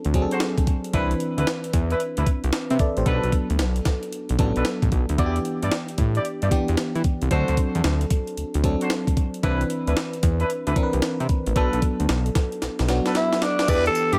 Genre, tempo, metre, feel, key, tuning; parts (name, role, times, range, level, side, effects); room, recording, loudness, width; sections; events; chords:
R&B, new jack swing; 113 BPM; 4/4; swing 65% on 16ths; E minor; A4 = 440 Hz
FM electric piano; accompaniment; 0.0-14.2 s; E3 to E5; -29 LUFS; equal; chorus
breakbeat sampler-style drum kit; drums; 0.0-14.2 s; crash cymbal, hi-hat, kick drum, snare drum, tambourine; -27 LUFS; equal
fat analog bass; bass; 0.1-14.2 s; A1 to E3; -25 LUFS; equal
mellow horn section; stabs; 0.3-14.2 s; D4 to D5; -32 LUFS; equal; digital delay
growling tenor saxophone; melody; 13.2-14.2 s; D4 to B4; -23 LUFS; equal
light reverb; -23 LUFS; mono
0.0-13.7 A section
drum fill 12.6-13.7
0.0 D7; 0.9 Cmaj9; 3.1 Bm7; 5.2 Em7; 7.3 D7; 9.4 Cmaj9; 11.6 Bm7; 13.7 Em7